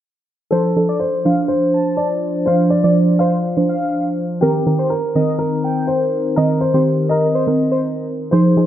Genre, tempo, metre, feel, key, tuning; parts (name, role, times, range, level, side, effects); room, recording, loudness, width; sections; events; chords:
pop; 123 BPM; 4/4; straight; C minor; A4 = 440 Hz
clear baby grand piano; melody; 0.5-8.7 s; G4 to F5; -21 LUFS; left 2 dB
octave-doubled lead; melody; 0.5-8.4 s; Bb4 to A5; -23 LUFS; equal; chorus
soft round pluck; accompaniment; 0.5-8.7 s; Eb3 to D5; -18 LUFS; right 2 dB; chorus
chorused pulse-width pad; sustained chords; 0.5-8.7 s; Eb3 to C5; -20 LUFS; equal
moderate lush hall reverb, RT60 2.6 s; low-pass filter; -15 LUFS; side -11 dB against mid
0.5-8.7 A section
0.5 Dm7; 4.4 Cm7